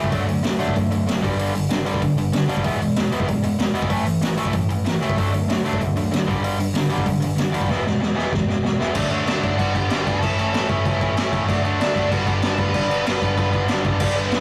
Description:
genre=punk rock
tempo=190 BPM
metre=4/4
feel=straight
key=unclear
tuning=A4 = 440 Hz
part: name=distorted electric guitar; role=riff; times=0.0-14.4 s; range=G2 to E4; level=-26 LUFS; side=equal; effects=overdrive
part: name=tight distorted guitar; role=riff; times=0.0-14.4 s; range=E2 to D4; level=-27 LUFS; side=equal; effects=distortion
part: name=modern bright picked electric bass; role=bass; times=0.0-14.4 s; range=E1 to D#2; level=-35 LUFS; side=equal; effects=none
part: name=raw garage drum kit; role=drums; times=0.0-14.4 s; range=crash cymbal, hi-hat, kick drum, snare drum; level=-25 LUFS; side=equal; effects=none
part: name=overdriven electric guitar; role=melody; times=9.3-14.4 s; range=B3 to B5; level=-29 LUFS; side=equal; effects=none
room=light reverb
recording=rough rehearsal-room recording, warm saturation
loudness=-21 LUFS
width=mono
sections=0.0-9.0 A section; 9.0-14.0 B section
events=drum fill 7.7-9.0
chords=0.1 D; 1.2 G5; 2.6 E; 3.9 A5; 5.2 D; 6.3 G5; 7.7 E; 9.0 D; 9.6 G; 10.2 A; 11.5 D; 12.1 G

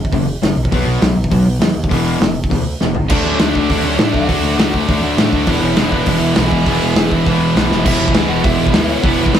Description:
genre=punk rock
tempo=202 BPM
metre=4/4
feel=straight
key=unclear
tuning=A4 = 440 Hz
part: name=growling picked electric bass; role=bass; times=0.0-9.4 s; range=E1 to A2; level=-20 LUFS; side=right 1 dB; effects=overdrive
part: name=loose indie drum kit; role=drums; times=0.0-9.4 s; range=crash cymbal, hi-hat, kick drum, snare drum, toms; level=-17 LUFS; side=equal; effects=none
part: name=sludgy distorted guitar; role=riff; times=0.1-9.4 s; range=E2 to D4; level=-18 LUFS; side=left 4 dB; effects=overdrive
part: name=tight distorted guitar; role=riff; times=0.1-9.4 s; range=E2 to D4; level=-22 LUFS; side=right 3 dB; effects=distortion
part: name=smooth overdriven lead guitar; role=melody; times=3.1-9.4 s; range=B3 to G#5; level=-23 LUFS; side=equal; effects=none
part: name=scooped high-gain guitar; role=riff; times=3.1-9.4 s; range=D3 to E4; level=-21 LUFS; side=right 2 dB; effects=distortion
room=moderate small room reverb, RT60 0.5 s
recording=rough rehearsal-room recording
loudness=-12 LUFS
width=side -9 dB against mid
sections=0.0-3.1 A section; 3.1-7.8 B section; 7.8-9.4 C section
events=drum fill 2.8, 7.7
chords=0.0 F#5; 0.6 B5; 1.9 E5; 3.1 D; 5.5 E

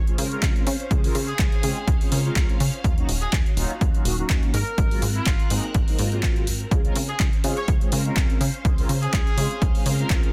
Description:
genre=filtered disco house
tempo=124 BPM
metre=4/4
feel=swing 55% on 16ths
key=Db major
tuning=A4 = 439 Hz
part: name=phased string machine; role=sustained chords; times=0.0-10.3 s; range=C4 to Gb6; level=-39 LUFS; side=equal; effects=ensemble chorus, phaser, vintage 12-bit sampler grit, sidechain pumping
part: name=plucky analog bass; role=bass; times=0.0-10.2 s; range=Eb1 to Db3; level=-28 LUFS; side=equal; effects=sidechain pumping
part: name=mellow synth brass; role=accompaniment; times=0.1-10.3 s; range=Gb3 to Bb4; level=-33 LUFS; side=equal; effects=chorus, phaser, vintage 12-bit sampler grit, sidechain pumping
part: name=punchy analog drum machine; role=drums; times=0.1-10.3 s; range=handclaps, hi-hat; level=-32 LUFS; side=equal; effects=overdrive, sidechain pumping on perc, sidechain pumping on hats, sidechain pumping on cymbals
part: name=electronic kick drum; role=drums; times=0.4-10.2 s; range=none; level=-24 LUFS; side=equal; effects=overdrive
part: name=bright horn section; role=melody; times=1.3-9.7 s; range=F4 to Db5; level=-35 LUFS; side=equal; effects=vintage 12-bit sampler grit, sidechain pumping, tape echo
room=digital ambience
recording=dense, heavily limited modern master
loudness=-22 LUFS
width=mono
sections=0.0-10.3 A section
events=none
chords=0.0 Dbmaj7; 2.8 Ebm9; 4.5 Ab9; 6.7 Dbmaj7

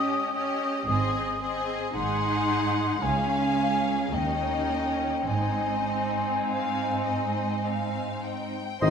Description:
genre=classical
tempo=50-57 BPM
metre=3/4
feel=rubato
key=Ab major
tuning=A4 = 440 Hz
part: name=rich studio violin section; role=melody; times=0.0-8.9 s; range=Eb5 to C6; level=-35 LUFS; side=left 4 dB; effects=none
part: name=mellow hollow silver concert flute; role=second line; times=0.0-8.9 s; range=G5 to Eb6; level=-29 LUFS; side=left 2 dB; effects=none
part: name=rich symphonic violin section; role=second line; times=0.0-8.9 s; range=C4 to Ab4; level=-34 LUFS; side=left 3 dB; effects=none
part: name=rich symphonic viola section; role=accompaniment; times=0.0-8.9 s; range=Eb3 to Eb4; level=-31 LUFS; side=right 2 dB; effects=none
part: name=rich studio cello section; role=bass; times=0.0-8.9 s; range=Db2 to Ab2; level=-33 LUFS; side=right 4 dB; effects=none
part: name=rich symphonic double bass section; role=bass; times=0.9-8.9 s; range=Ab1 to Eb2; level=-34 LUFS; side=right 3 dB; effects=none
part: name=warm clarinet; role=second line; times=8.8-8.9 s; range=C5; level=-30 LUFS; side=left 3 dB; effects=none
part: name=warm oboe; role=second line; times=8.8-8.9 s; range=Eb5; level=-30 LUFS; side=left 1 dB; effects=none
part: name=mellow bassoon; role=accompaniment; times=8.8-8.9 s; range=Eb3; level=-28 LUFS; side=left 4 dB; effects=none
part: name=mellow French horn section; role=sustained chords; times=8.8-8.9 s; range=Eb3 to Eb4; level=-24 LUFS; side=left 8 dB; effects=none
part: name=mellow trumpet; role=stabs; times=8.8-8.9 s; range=Eb5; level=-25 LUFS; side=equal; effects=none
part: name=dark tuba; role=bass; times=8.8-8.9 s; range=Ab1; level=-24 LUFS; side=right 4 dB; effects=none
room=wet concert hall reverb, RT60 2.4 s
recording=minimal, uncompressed stereo recording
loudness=-25 LUFS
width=side -6 dB against mid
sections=0.0-8.8 A section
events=none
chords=0.0 Eb7/Ab; 0.9 Ab; 1.9 Ab7; 3.0 Db; 4.1 Eb7; 5.3 Ab

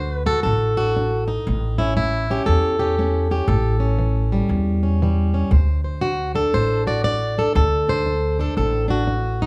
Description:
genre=acoustic country blues, solo or duo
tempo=118 BPM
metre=4/4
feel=swing 61% on 8ths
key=unclear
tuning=A4 = 440 Hz
part: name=fingerpicked plugged-in swing-style acoustic guitar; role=melody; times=0.0-9.5 s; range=E2 to D5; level=-23 LUFS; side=equal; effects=none
part: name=upright bass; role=bass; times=0.0-9.5 s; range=A1 to E2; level=-23 LUFS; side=equal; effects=none
room=light reverb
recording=small room ambience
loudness=-20 LUFS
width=mono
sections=0.0-9.5 A section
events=none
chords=0.0 D; 1.5 A7; 5.5 D7

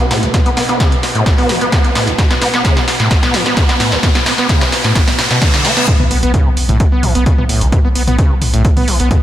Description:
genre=driving peak-time techno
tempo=130 BPM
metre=4/4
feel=straight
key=unclear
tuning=A4 = 441 Hz
part: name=overdriven acid bass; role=riff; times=0.0-9.2 s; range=B1 to B3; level=-16 LUFS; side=equal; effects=ensemble chorus, sidechain pumping, analog delay
part: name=analog drone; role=drone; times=0.0-5.9 s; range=B2 to B3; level=-24 LUFS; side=equal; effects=chorus, sidechain pumping
part: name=punchy analog drum machine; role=drums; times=0.0-9.2 s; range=hi-hat, snare drum, toms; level=-17 LUFS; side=equal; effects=high-pass filter on hats, high-pass filter on snare, high-pass filter on toms, high-pass filter on room
part: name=riser, reverse cymbal and impact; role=sound effects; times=0.0-7.7 s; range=none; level=-23 LUFS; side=equal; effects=none
part: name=electronic kick drum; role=drums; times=0.3-9.2 s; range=none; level=-13 LUFS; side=equal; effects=none
part: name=saturated sub bass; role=bass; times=6.0-9.1 s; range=B1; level=-16 LUFS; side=equal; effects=overdrive, sidechain pumping, low-pass filter
room=moderate lush hall reverb, RT60 1.7 s, digital ambience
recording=dreamy mix soaked in reverb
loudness=-10 LUFS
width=side -12 dB against mid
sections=0.0-5.9 A section; 5.9-9.2 B section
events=build-up 0.0-5.9; drum fill 0.0-5.9; riser 0.0-5.9; filter sweep on acid bass 0.0-5.9; reverse cymbal 5.0-5.9; drop 5.9-9.2; impact 5.9-7.7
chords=0.0 N.C.; 5.9 Bsus2

